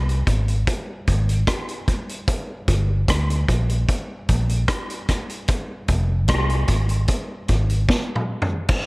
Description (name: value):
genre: dub reggae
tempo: 75 BPM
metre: 4/4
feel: straight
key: unclear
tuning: A4 = 440 Hz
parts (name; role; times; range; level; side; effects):
- fingered electric bass; bass; 0.0-7.8 s; F1 to D2; -20 LUFS; equal; none
- vintage drum kit; drums; 0.1-8.9 s; crash cymbal, hi-hat, kick drum, rim click, snare drum, toms; -22 LUFS; equal; none
room: light reverb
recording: none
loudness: -19 LUFS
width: side -25 dB against mid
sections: 0.0-8.7 A section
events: drum fill 7.9-8.7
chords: none